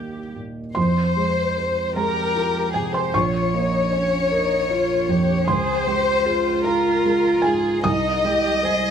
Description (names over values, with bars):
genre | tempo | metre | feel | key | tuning
neoclassical piano and strings | 51 BPM (dotted quarters) | 6/8 | rubato | unclear | A4 = 439 Hz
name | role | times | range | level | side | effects
dark chamber violin section | melody | 0.0-8.9 s | G4 to Eb5 | -22 LUFS | left 4 dB | none
dark cello | second line | 0.0-8.9 s | G3 to Ab4 | -24 LUFS | right 2 dB | none
felt-muted upright piano | accompaniment | 0.0-8.9 s | Bb1 to Eb6 | -22 LUFS | right 2 dB | none
room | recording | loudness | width
moderate studio reverb, RT60 0.6 s | band playing live in one room | -18 LUFS | side -8 dB against mid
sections
0.8-8.9 A section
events
none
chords
0.0 Eb; 0.8 Fm; 3.1 Bbm; 5.5 Db; 7.9 Ab/C